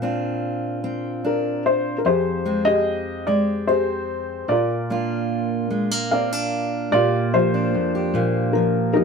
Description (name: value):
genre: folk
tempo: 74 BPM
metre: 3/4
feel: straight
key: unclear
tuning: A4 = 439 Hz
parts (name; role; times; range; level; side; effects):
- fingerpicked steel-string acoustic guitar; accompaniment; 0.0-9.0 s; F2 to G4; -22 LUFS; right 1 dB; none
- felt-muted upright piano; melody; 1.3-9.0 s; Eb4 to F5; -21 LUFS; left 2 dB; none
room: moderate studio reverb, RT60 0.6 s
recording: none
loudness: -19 LUFS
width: side -5 dB against mid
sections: 0.0-6.9 A section; 6.9-9.0 B section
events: none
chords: 0.0 Bbadd9; 2.0 Fmadd9; 4.5 Bb; 6.9 Bb6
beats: 0.42 1.23 | 2.04 2.85 3.67 | 4.48 5.29 6.11 | 6.92 7.73 8.55